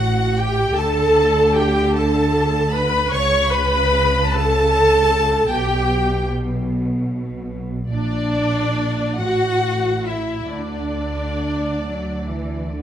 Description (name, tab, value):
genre	classical, slow romantic movement for string orchestra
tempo	44-52 BPM (dotted quarters)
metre	6/8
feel	rubato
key	D major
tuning	A4 = 441 Hz
part	rich chamber violin section	melody	0.0-12.7 s	D5 to C#6	-26 LUFS	left 4 dB	none
part	rich chamber violin section	second line	0.0-12.7 s	D5 to C#6	-25 LUFS	left 1 dB	none
part	rich chamber viola section	accompaniment	0.0-12.7 s	D4 to C#5	-20 LUFS	equal	none
part	rich chamber double bass section	bass	0.0-12.8 s	A1 to D2	-24 LUFS	right 1 dB	none
part	rich symphonic cello section	bass	0.0-12.8 s	A2 to F#3	-25 LUFS	right 1 dB	none
room	moderate recital hall reverb, RT60 1.3 s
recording	close, detailed microphones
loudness	-17 LUFS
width	side -10 dB against mid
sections	0.0-12.8 A section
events	none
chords	0.0 A5; 0.8 D5; 3.1 A/C#; 5.5 G/B; 7.9 Bb; 9.2 F#m7/A; 10.5 D